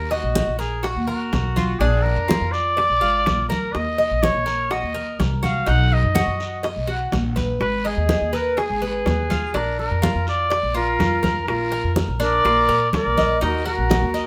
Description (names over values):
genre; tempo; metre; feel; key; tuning
latin, Cuban son and guajira; 124 BPM; 4/4; straight; unclear; A4 = 440 Hz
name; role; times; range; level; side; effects
warm trumpet; melody; 0.0-14.3 s; Gb4 to F#5; -25 LUFS; equal; none
Cuban tres; arpeggios; 0.0-14.3 s; D4 to Eb5; -28 LUFS; equal; none
upright bass; bass; 0.0-14.3 s; Ab1 to Bb2; -26 LUFS; equal; none
congas; percussion; 0.1-14.1 s; none; -28 LUFS; equal; none
bongos; percussion; 0.4-14.3 s; none; -31 LUFS; equal; none
guiro; percussion; 0.4-14.3 s; none; -41 LUFS; equal; none
breathy concert flute; second line; 10.8-14.3 s; F4 to Bb4; -27 LUFS; equal; none
room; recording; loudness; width
moderate studio reverb, RT60 0.6 s; none; -21 LUFS; mono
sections
0.0-11.5 A section; 11.5-14.3 B section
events
none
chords
0.0 Ebm; 1.8 Bb; 3.7 Ebm; 5.7 B; 7.6 Abm; 9.6 Bb; 13.4 Ebm